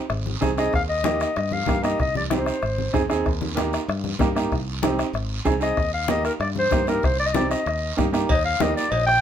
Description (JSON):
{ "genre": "latin, cumbia", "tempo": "190 BPM", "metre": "4/4", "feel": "straight", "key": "Eb major", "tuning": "A4 = 442 Hz", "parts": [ { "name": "fingered electric bass", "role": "bass", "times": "0.1-9.2 s", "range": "Ab1 to G2", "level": "-28 LUFS", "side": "equal", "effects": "none" }, { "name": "bombo", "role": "percussion", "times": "0.1-9.2 s", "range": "none", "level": "-26 LUFS", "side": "left 2 dB", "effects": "none" }, { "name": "congas", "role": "percussion", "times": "0.1-9.2 s", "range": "none", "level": "-29 LUFS", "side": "left 4 dB", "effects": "none" }, { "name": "guiro", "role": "percussion", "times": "0.1-9.2 s", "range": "none", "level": "-36 LUFS", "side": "right 6 dB", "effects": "none" }, { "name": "bright upright piano", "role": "accompaniment", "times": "0.4-8.8 s", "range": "Bb3 to Ab4", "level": "-25 LUFS", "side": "right 4 dB", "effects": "none" }, { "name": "warm clarinet", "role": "melody", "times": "0.6-3.1, 5.6-9.2 s", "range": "Bb4 to G5", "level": "-23 LUFS", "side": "left 2 dB", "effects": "none" }, { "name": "cowbell", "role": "percussion", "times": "8.3-9.1 s", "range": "none", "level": "-30 LUFS", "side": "right 4 dB", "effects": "none" } ], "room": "light reverb", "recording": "band playing live in one room", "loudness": "-20 LUFS", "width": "side -9 dB against mid", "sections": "0.0-8.3 A section", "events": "none", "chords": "0.1 Ab; 0.7 Ebadd9; 2.0 Cm; 2.6 Ab; 3.3 Eb; 4.5 Cm; 5.1 Ab; 5.8 Eb; 7.0 Cm; 7.7 Eb" }